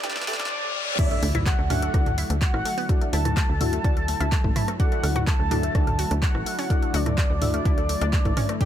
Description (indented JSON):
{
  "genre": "progressive house",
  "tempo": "126 BPM",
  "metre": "4/4",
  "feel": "straight",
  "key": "D major",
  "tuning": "A4 = 440 Hz",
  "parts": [
    { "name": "warm velvety synth lead", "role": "melody", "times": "0.0-8.7 s", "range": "D5 to A5", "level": "-30 LUFS", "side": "equal", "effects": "chorus, tremolo, digital delay" },
    { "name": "warm analog pad", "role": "sustained chords", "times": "0.0-8.7 s", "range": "D3 to E4", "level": "-35 LUFS", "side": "equal", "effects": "chorus, sidechain pumping" },
    { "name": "analog pluck", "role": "arpeggios", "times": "0.0-8.7 s", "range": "A3 to G4", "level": "-34 LUFS", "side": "equal", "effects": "chorus, vintage 12-bit sampler grit, sidechain pumping, digital delay" },
    { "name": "deep mellow chord stab", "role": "stabs", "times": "0.0-8.7 s", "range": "D4 to E5", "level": "-33 LUFS", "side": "left 2 dB", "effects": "chorus, phaser, sidechain pumping, digital delay" },
    { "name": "tight sequencer bass", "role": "bass", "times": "0.0-8.3 s", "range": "A1 to D2", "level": "-26 LUFS", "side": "equal", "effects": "sidechain pumping" },
    { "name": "deep house drum kit", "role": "drums", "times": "0.0-8.7 s", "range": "crash cymbal, handclaps, hi-hat, ride cymbal, rim click, snare drum", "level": "-32 LUFS", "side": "equal", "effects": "sidechain pumping on hats, sidechain pumping on cymbals" },
    { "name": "electronic congas, woodblock and toms", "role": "percussion", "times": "0.0-8.5 s", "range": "none", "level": "-30 LUFS", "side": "equal", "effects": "overdrive, sidechain pumping on toms, sidechain pumping on perc" },
    { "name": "riser, reverse cymbal and impact", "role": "sound effects", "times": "0.0-2.9 s", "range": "none", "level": "-31 LUFS", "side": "left 1 dB", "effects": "none" },
    { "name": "electronic kick drum", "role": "drums", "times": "1.0-8.7 s", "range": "none", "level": "-22 LUFS", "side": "equal", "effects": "none" }
  ],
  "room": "digital ambience",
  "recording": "high-pass filter",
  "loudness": "-21 LUFS",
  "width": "side -10 dB against mid",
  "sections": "1.0-8.7 A section",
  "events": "drum fill 0.0-0.5; riser 0.0-1.0; reverse cymbal 0.0-1.0; drop 1.0-8.7; impact 1.0-2.9",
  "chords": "0.0 A7sus4; 1.0 Dadd9"
}